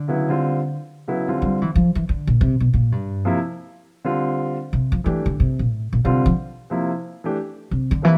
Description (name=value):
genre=modal jazz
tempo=181 BPM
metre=3/4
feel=swing 65% on 8ths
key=Bb lydian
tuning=A4 = 439 Hz
part: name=upright bass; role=bass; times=0.0-8.2 s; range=G2 to G3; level=-21 LUFS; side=equal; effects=none
part: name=warm concert grand piano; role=accompaniment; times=0.1-8.2 s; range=C3 to G4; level=-25 LUFS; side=equal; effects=none
room=light reverb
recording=close, detailed microphones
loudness=-22 LUFS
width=mono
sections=0.0-8.2 A section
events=upright bass solo 0.0-8.2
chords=0.0 Bb69